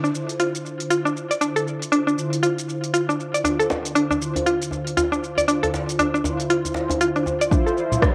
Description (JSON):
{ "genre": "afro house", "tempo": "118 BPM", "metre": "4/4", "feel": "swing 59% on 16ths", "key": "D minor", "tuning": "A4 = 440 Hz", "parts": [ { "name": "mallet-like synth pluck", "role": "arpeggios", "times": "0.0-8.1 s", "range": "D4 to D5", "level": "-24 LUFS", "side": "equal", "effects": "chorus, sidechain pumping, cassette tape, tape echo" }, { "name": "mellow synth brass", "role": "stabs", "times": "0.0-8.1 s", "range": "D3 to C5", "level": "-29 LUFS", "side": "equal", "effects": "chorus, sidechain pumping, cassette tape, tape echo" }, { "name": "deep house drum kit", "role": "drums", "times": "0.0-8.1 s", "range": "hi-hat, rim click, shaker", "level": "-31 LUFS", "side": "equal", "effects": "cassette tape" }, { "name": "djembe", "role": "percussion", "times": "3.4-7.4 s", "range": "none", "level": "-32 LUFS", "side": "equal", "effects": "none" }, { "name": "electronic kick drum", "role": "drums", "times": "7.5-8.1 s", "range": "none", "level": "-21 LUFS", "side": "equal", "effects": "cassette tape" }, { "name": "congas", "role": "percussion", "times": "7.5-8.0 s", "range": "none", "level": "-30 LUFS", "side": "equal", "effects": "none" }, { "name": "riser", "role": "sound effects", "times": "7.8-8.1 s", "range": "none", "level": "-36 LUFS", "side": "equal", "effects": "none" } ], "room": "light reverb", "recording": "home recording on cassette", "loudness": "-22 LUFS", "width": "mono", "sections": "0.0-7.5 A section", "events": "none", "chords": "0.0 Dm7" }